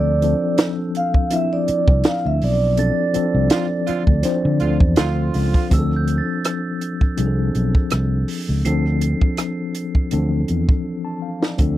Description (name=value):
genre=lush 1970s-style soul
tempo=82 BPM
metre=4/4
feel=swing 54% on 16ths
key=D minor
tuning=A4 = 440 Hz
part: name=vibraphone with soft mallets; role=melody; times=0.0-5.0 s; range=D5 to F5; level=-22 LUFS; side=right 3 dB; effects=none
part: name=mellow tine electric piano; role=accompaniment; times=0.0-11.8 s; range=E3 to C6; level=-23 LUFS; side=left 3 dB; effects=medium stereo tremolo
part: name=fingered electric bass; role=bass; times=0.0-11.8 s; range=B1 to D3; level=-19 LUFS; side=equal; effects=none
part: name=compact cocktail drum kit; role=drums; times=0.2-11.8 s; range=hi-hat, kick drum, rim click, snare drum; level=-18 LUFS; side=equal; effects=none
part: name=glockenspiel with soft plastic mallets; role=texture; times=2.8-10.6 s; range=E6 to C7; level=-35 LUFS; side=right 6 dB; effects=none
part: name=warm horn section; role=stabs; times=3.5-5.7 s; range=D3 to F4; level=-26 LUFS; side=right 8 dB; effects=none
room=little or no reverb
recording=dry, close 1970s-style studio recording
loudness=-17 LUFS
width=side -14 dB against mid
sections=0.0-5.7 A section; 5.7-11.6 B section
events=band accent 2.8-5.7; tine electric piano fill 4.6-5.7; drum fill 10.9-11.6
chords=0.0 Dm7